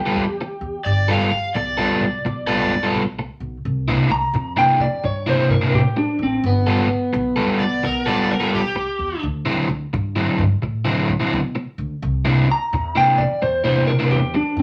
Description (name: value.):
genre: blues.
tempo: 86 BPM.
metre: 4/4.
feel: swing 64% on 8ths.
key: G mixolydian.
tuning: A4 = 441 Hz.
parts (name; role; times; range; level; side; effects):
electric guitar through a small old amp; melody; 0.0-14.6 s; B3 to Bb5; -23 LUFS; equal; spring reverb.
upright bass; bass; 0.0-14.6 s; F1 to B2; -27 LUFS; equal; none.
crunchy overdriven guitar; riff; 0.1-14.4 s; C3 to A4; -22 LUFS; equal; none.
overdriven slide guitar; second line; 0.8-2.8, 7.6-9.2 s; G4 to F5; -26 LUFS; equal; none.
room: wet studio ambience, RT60 0.5 s.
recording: none.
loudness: -20 LUFS.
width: mono.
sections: 0.0-14.6 A section.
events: none.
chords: 0.0 G9; 3.6 C9; 6.4 G9; 9.2 D9; 12.0 C9.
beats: 0.15 | 0.85 1.55 2.24 2.94 | 3.64 4.34 5.04 5.73 | 6.43 7.13 7.83 8.53 | 9.22 9.92 10.62 11.32 | 12.02 12.71 13.41 14.11.